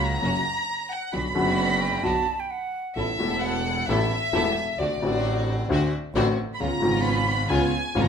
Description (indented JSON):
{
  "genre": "tango",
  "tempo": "132 BPM",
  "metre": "4/4",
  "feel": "rubato",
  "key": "unclear",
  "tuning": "A4 = 443 Hz",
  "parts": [
    { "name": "warm chamber violin section", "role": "second line", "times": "0.0-8.1 s", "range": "D5 to B5", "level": "-27 LUFS", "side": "equal", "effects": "none" },
    { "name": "warm upright piano", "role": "accompaniment", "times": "0.0-8.1 s", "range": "E1 to A4", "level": "-26 LUFS", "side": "left 2 dB", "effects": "none" },
    { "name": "rich studio string section", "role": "stabs", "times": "0.0-8.1 s", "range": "A#3 to A4", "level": "-31 LUFS", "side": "right 3 dB", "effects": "none" },
    { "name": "dark double bass", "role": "bass", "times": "0.0-8.1 s", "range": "E1 to D2", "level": "-29 LUFS", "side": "right 1 dB", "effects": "none" },
    { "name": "bright silver concert flute", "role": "second line", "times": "1.6-3.0 s", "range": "F#5 to A5", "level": "-28 LUFS", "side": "right 6 dB", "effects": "none" }
  ],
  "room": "moderate large studio reverb, RT60 0.9 s",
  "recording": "minimal, uncompressed stereo recording",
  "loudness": "-22 LUFS",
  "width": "side -7 dB against mid",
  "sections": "0.0-3.0 A section; 3.0-8.1 A section",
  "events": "violin section solo 0.0-3.0, 3.0-8.1",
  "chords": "0.0 F#; 1.1 Bm; 3.0 Asus2; 4.8 D7; 6.6 C#7"
}